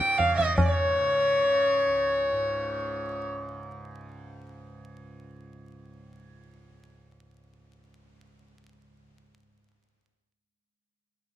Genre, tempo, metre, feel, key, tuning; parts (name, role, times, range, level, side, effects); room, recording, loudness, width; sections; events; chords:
indian classical, Hindustani; 157 BPM; 5/4; straight; A4 = 441 Hz
rich violin; melody; 0.0-3.2 s; Db5 to G5; -24 LUFS; equal
tanpura; drone; 0.0-9.5 s; Db2 to Db3; -38 LUFS; right 3 dB
tabla; percussion; 0.0-0.7 s; -25 LUFS; equal
wet spring reverb, RT60 1.8 s; dark, warm production, vinyl crackle; -23 LUFS; side -12 dB against mid
0.6-2.5 A section